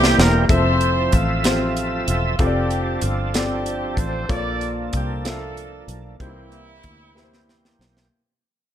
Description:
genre	slow gospel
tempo	63 BPM (dotted quarters)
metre	6/8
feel	straight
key	F major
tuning	A4 = 440 Hz
part	warm horn section	melody	0.0-7.8 s	G3 to D5	-25 LUFS	equal	none
part	warm grand piano	accompaniment	0.0-8.1 s	Bb2 to F5	-25 LUFS	left 2 dB	none
part	overdriven tonewheel organ	sustained chords	0.0-8.1 s	E3 to E5	-26 LUFS	right 3 dB	slow rotary speaker, chorus vibrato
part	fingered electric bass	bass	0.0-8.1 s	E1 to D2	-24 LUFS	equal	none
part	tight funk drum kit	drums	0.0-8.1 s	hi-hat, kick drum, snare drum	-21 LUFS	equal	none
room	moderate large studio reverb, RT60 1.2 s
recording	none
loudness	-18 LUFS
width	side -10 dB against mid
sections	0.5-8.1 A section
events	drum fill 0.0-0.5, 7.2-8.1; fade-out 0.5-8.1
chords	0.5 Fmaj7; 2.4 Dm7/F; 4.3 Bbmaj7; 6.2 C7

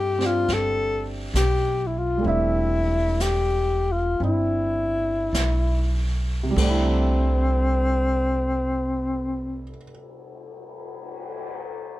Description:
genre	jazz ballad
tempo	46-72 BPM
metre	4/4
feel	swing 69% on 8ths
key	C major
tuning	A4 = 439 Hz
part	breathy alto saxophone	melody	0.0-9.7 s	C4 to A4	-24 LUFS	left 2 dB	none
part	warm grand piano	accompaniment	0.0-12.0 s	C3 to E5	-29 LUFS	right 2 dB	none
part	upright bass	bass	0.0-9.7 s	E1 to G2	-24 LUFS	right 1 dB	none
part	jazz brush drum kit	drums	0.2-11.5 s	brushed snare drum, crash cymbal, cymbal swell, hi-hat, kick drum, snare drum	-33 LUFS	equal	none
room	little or no reverb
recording	none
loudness	-20 LUFS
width	side -16 dB against mid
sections	0.0-6.5 A section; 6.5-11.7 B section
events	slowing down 0.0-6.5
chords	0.0 C6

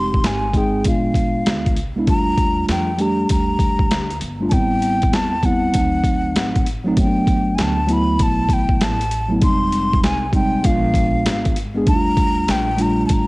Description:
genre	hip hop, jazz-hop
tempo	98 BPM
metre	4/4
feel	swing 65% on 16ths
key	unclear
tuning	A4 = 436 Hz
part	breathy mellow silver concert flute	melody	0.0-13.3 s	F5 to C6	-22 LUFS	left 1 dB	cassette tape, analog delay
part	mellow tine electric piano	accompaniment	0.0-13.3 s	F#3 to Ab4	-20 LUFS	equal	medium stereo tremolo, cassette tape
part	upright bass	bass	0.0-13.3 s	F1 to F2	-25 LUFS	equal	none
part	boom bap sampler-style drum kit	drums	0.1-13.3 s	hi-hat, kick drum, snare drum	-19 LUFS	equal	cassette tape
room	little or no reverb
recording	home recording on cassette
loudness	-15 LUFS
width	side -23 dB against mid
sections	0.0-7.0 A section; 7.0-13.3 A section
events	none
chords	0.0 Fm7; 0.8 Bb7b9; 2.1 Ebmaj9#11; 4.5 Am7; 5.7 D7b9; 7.0 Gmaj9; 9.4 Fm7; 10.6 Bb7b9; 11.9 Ebmaj9#11

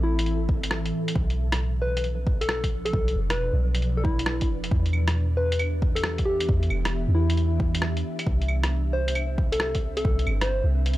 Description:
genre	future garage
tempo	135 BPM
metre	4/4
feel	swing 67% on 16ths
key	unclear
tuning	A4 = 440 Hz
part	soft struck synth lead	melody	0.0-10.6 s	E4 to C5	-30 LUFS	left 1 dB	chorus, cassette tape, tape echo
part	ethereal airy pad	sustained chords	0.0-11.0 s	A2 to E5	-32 LUFS	equal	ensemble chorus, built-in reverb, sidechain pumping
part	soft 808-style bass	bass	0.0-11.0 s	E1 to E2	-25 LUFS	equal	sidechain pumping
part	lo-fi sampler-style drum kit	drums	0.2-11.0 s	claves, hi-hat, rim click	-30 LUFS	equal	small room reverb
part	electronic kick drum	drums	0.5-10.2 s	none	-25 LUFS	equal	overdrive, small room reverb
room	little or no reverb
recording	dry, gritty hardware recording, transformer saturation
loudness	-22 LUFS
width	side -16 dB against mid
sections	0.0-11.0 A section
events	none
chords	0.0 Am; 1.2 Bdim; 4.7 Em7; 8.3 Cmaj7

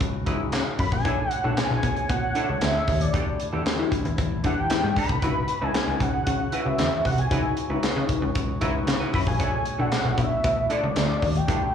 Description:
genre	early-eighties boogie funk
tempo	115 BPM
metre	4/4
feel	straight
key	unclear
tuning	A4 = 440 Hz
part	mellow woodwind section	sustained chords	0.0-11.7 s	D3 to C#5	-34 LUFS	left 3 dB	none
part	semi-hollow electric guitar	riff	0.0-11.6 s	D4 to B4	-34 LUFS	right 6 dB	analog chorus, slapback echo
part	plucky analog bass	bass	0.0-11.6 s	A#1 to E3	-26 LUFS	left 1 dB	none
part	tight funk drum kit	drums	0.0-11.6 s	handclaps, hi-hat, kick drum, snare drum	-27 LUFS	equal	none
part	overdriven tine electric piano	accompaniment	0.3-11.7 s	C#4 to D5	-32 LUFS	left 6 dB	phaser, slapback echo
part	fat analog lead	melody	0.8-11.7 s	D5 to B5	-27 LUFS	equal	chorus, slapback echo, analog delay
room	little or no reverb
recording	live gig heard through the venue's PA, club reverb, small room reverb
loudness	-22 LUFS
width	side -8 dB against mid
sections	0.0-11.7 A section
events	none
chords	0.0 C#m11; 1.0 Bm11; 3.1 Em11; 5.2 C#m11; 9.4 Bm11

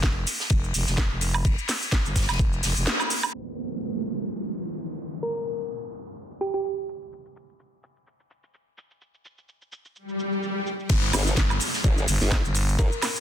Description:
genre	bass house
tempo	127 BPM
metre	4/4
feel	swing 55% on 16ths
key	G minor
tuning	A4 = 439 Hz
part	growling FM bass	bass	0.0-2.9, 10.9-12.8 s	F1 to G1	-26 LUFS	equal	tube saturation, sidechain pumping
part	electronic kick drum	drums	0.0-2.5, 10.9-12.9 s	none	-22 LUFS	equal	none
part	garage drum kit	drums	0.0-13.2 s	crash cymbal, hi-hat, shaker, snare drum, woodblock	-27 LUFS	right 1 dB	low-pass filter on hats, low-pass filter on perc, low-pass filter on snare, low-pass filter on cymbals
part	unplugged drum kit	drums	0.0-3.2, 10.9-13.2 s	hi-hat, ride cymbal, snare drum	-33 LUFS	left 3 dB	sidechain pumping on cymbals, high-pass filter on cymbals, sidechain pumping on hats, high-pass filter on hats, high-pass filter on snare, high-pass filter on room
part	downlifter and swell	sound effects	3.3-13.2 s	none	-31 LUFS	equal	none
part	thumb-piano-like synth pluck	melody	5.2-6.6, 12.8-13.2 s	G4 to Bb4	-30 LUFS	right 1 dB	chorus, cassette tape, ping-pong delay
part	formant-sweep wobble bass	bass	11.1-12.9 s	G1	-25 LUFS	equal	chorus, sidechain pumping
room	light reverb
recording	dense, heavily limited modern master, low-pass filter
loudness	-23 LUFS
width	side -10 dB against mid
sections	0.0-3.3 A section; 3.3-10.9 B section; 10.9-13.2 C section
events	band accent 2.9; filter sweep 3.3-10.9; swell 10.1-10.9; drop 10.9-13.2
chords	none

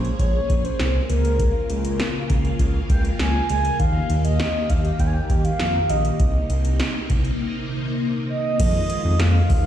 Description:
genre	synth-pop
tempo	100 BPM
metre	4/4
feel	straight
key	F minor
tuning	A4 = 440 Hz
part	mellow horn-like synth lead	melody	0.0-9.7 s	Bb4 to Ab5	-26 LUFS	right 2 dB	chorus, ping-pong delay
part	string machine, full ensemble	sustained chords	0.0-9.7 s	C3 to Ab4	-27 LUFS	left 1 dB	phaser, ensemble chorus
part	smooth synth bass	bass	0.0-9.7 s	Bb1 to F2	-22 LUFS	equal	none
part	electro analog drum machine	drums	0.0-9.6 s	crash cymbal, hi-hat, kick drum, snare drum	-23 LUFS	equal	none
room	light reverb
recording	played on a big sound system in a bare room, stone room reverb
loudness	-19 LUFS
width	side -11 dB against mid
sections	0.0-8.6 A section; 8.6-9.7 B section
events	break 7.4-8.6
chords	0.0 Bbm7; 1.1 Db6; 3.8 Eb; 6.2 Cm7; 8.6 Fm7

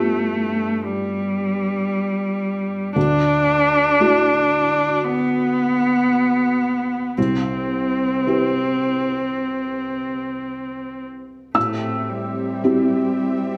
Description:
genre	neoclassical piano and strings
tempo	54-58 BPM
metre	4/4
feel	rubato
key	A minor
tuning	A4 = 440 Hz
part	muted cello	second line	0.0-13.6 s	G3 to D4	-22 LUFS	equal	none
part	felt-muted upright piano	accompaniment	0.0-13.6 s	C2 to E6	-25 LUFS	equal	none
part	brassy analog pad	sustained chords	11.5-13.6 s	C4 to E5	-29 LUFS	equal	chorus
room	wet recital hall reverb, RT60 1.3 s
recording	none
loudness	-20 LUFS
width	mono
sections	0.0-11.6 A section; 11.6-13.6 A section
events	none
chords	0.0 G7; 3.0 Dadd9; 7.2 Cmaj7; 11.6 Am7

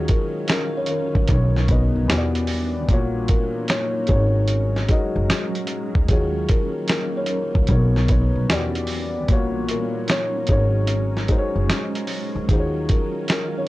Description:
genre	lo-fi hip hop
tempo	75 BPM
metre	4/4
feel	swing 66% on 16ths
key	Eb minor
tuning	A4 = 439 Hz
part	buzzing kalimba	melody	0.0-13.7 s	Ab4 to Db5	-28 LUFS	left 1 dB	low-pass filter
part	warm upright piano	accompaniment	0.0-13.7 s	Bb2 to D#5	-26 LUFS	left 2 dB	low-pass filter
part	granular cloud pad	sustained chords	0.0-13.7 s	Eb3 to Gb5	-31 LUFS	right 1 dB	built-in reverb, low-pass filter
part	upright bass	bass	0.0-12.9 s	Gb1 to E2	-22 LUFS	equal	tube saturation
part	dusty soul sampler-style drum kit	drums	0.1-13.5 s	finger snaps, hi-hat, kick drum, snare drum	-21 LUFS	equal	vintage 12-bit sampler grit
room	little or no reverb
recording	dry, gritty hardware recording, transformer saturation, cassette tape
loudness	-18 LUFS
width	side -17 dB against mid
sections	0.0-13.7 A section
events	none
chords	0.0 Ebm7; 1.3 Bmaj9; 2.1 Em7; 2.9 Ebm7/Bb; 4.1 Ab7sus4; 6.1 Ebm7; 7.7 Bmaj9; 8.5 Em7; 9.3 Ebm7/Bb; 10.5 Ab7sus4; 12.5 Ebm7

